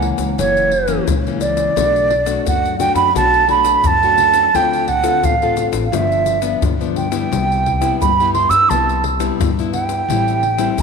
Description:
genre	samba and choro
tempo	87 BPM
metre	4/4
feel	straight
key	unclear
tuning	A4 = 440 Hz
part	wooden flute	melody	0.0-10.8 s	C#5 to E6	-15 LUFS	right 4 dB	none
part	nylon-string guitar	accompaniment	0.0-10.8 s	F#2 to A4	-21 LUFS	left 9 dB	none
part	upright bass	bass	0.0-10.8 s	F#1 to G2	-24 LUFS	equal	none
part	pandeiro, egg shaker and surdo	percussion	0.0-10.8 s	none	-22 LUFS	left 4 dB	none
room	moderate echo chamber reverb, RT60 2.4 s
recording	1960s-style stereo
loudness	-13 LUFS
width	side -5 dB against mid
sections	0.0-10.8 A section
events	none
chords	0.0 F#7; 1.8 Bm7; 4.5 Dm7; 5.9 G7; 7.3 Cmaj7; 10.1 Am7

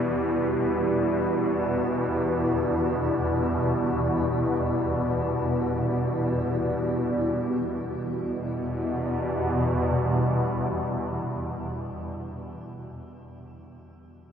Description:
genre	dark ambient drone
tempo	free time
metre	none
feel	none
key	E minor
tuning	A4 = 440 Hz
part	deep dark ambient pad	sustained chords	0.0-12.1 s	E4 to F#5	-28 LUFS	equal	chorus, built-in reverb, shimmer reverb
part	old church bells	arpeggios	0.0-11.9 s	E3 to G4	-45 LUFS	equal	none
part	swarming drone	drone	0.0-11.9 s	E2 to B2	-27 LUFS	equal	built-in reverb, phaser
part	bubbling stepped-filter texture	texture	0.0-7.3 s	D5	-53 LUFS	right 1 dB	none
room	wet cathedral reverb, RT60 5.7 s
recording	in a vast, echoing space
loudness	-24 LUFS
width	side -8 dB against mid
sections	0.0-7.2 A section; 7.2-11.3 B section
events	none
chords	0.0 G; 7.2 Emadd9

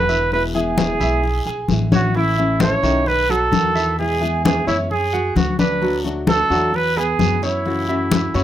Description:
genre	latin, Cuban son and guajira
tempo	131 BPM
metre	4/4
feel	straight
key	unclear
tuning	A4 = 438 Hz
part	mellow trumpet	melody	0.0-8.4 s	E4 to C#5	-20 LUFS	right 3 dB	none
part	nylon-string guitar	accompaniment	0.0-8.4 s	B2 to F#4	-24 LUFS	left 4 dB	none
part	upright bass	bass	0.0-8.4 s	E1 to F#2	-23 LUFS	equal	none
part	bright baby grand piano	arpeggios	0.1-8.4 s	D#3 to G#5	-26 LUFS	right 2 dB	none
part	congas	percussion	0.1-8.4 s	none	-21 LUFS	left 4 dB	none
part	guiro	percussion	0.1-8.4 s	none	-34 LUFS	left 5 dB	none
room	moderate studio reverb, RT60 0.5 s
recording	rough home demo mix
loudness	-16 LUFS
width	side -11 dB against mid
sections	0.0-8.4 A section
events	none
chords	0.3 E; 2.1 A; 3.1 B7; 4.0 E; 4.9 F#m; 5.8 D; 6.7 Eadd9; 7.7 F#m7

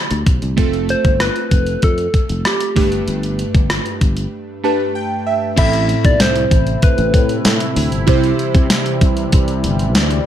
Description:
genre	1980s-style pop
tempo	96 BPM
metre	4/4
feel	straight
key	A minor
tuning	A4 = 441 Hz
part	glassy digital keys	accompaniment	0.0-10.3 s	G2 to B5	-20 LUFS	right 2 dB	chorus
part	sustaining fretless electric bass	bass	0.1-10.2 s	F1 to C3	-20 LUFS	equal	lush chorus
part	clean 12-bit digital drum machine	drums	0.1-10.3 s	crash cymbal, hi-hat, kick drum, rim click, snare drum, tambourine	-15 LUFS	equal	overdrive
part	soft struck synth lead	melody	0.9-7.8 s	G4 to E5	-20 LUFS	left 1 dB	chorus, ping-pong delay
part	sweeping resonant pad	sustained chords	6.4-10.3 s	C3 to E4	-23 LUFS	left 1 dB	chorus
room	light reverb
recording	none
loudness	-13 LUFS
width	side -10 dB against mid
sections	0.0-5.6 A section; 5.6-10.3 B section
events	synth keys fill 4.3-5.6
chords	0.0 D7sus4; 0.6 F; 2.8 Gadd9; 5.6 Amadd9; 8.1 C

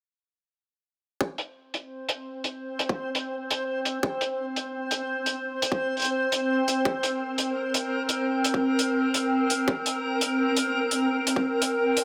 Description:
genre	half-time drum and bass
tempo	170 BPM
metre	4/4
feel	swing 56% on 16ths, half-time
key	unclear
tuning	A4 = 443 Hz
part	electronic kick drum	drums	1.2-11.4 s	none	-30 LUFS	equal	high-pass filter on kick, small room ambience, high-pass filter on room
part	backwards swelling texture	texture	1.9-12.0 s	C4 to C5	-28 LUFS	equal	built-in reverb
part	hi-hat	drums	1.4-12.0 s	none	-30 LUFS	equal	low-pass filter on hats, small room ambience, low-pass filter on room
room	wet lush hall reverb, RT60 1.9 s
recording	none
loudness	-27 LUFS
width	mono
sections	1.2-12.0 A section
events	none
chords	1.2 Abadd9 (rootless)

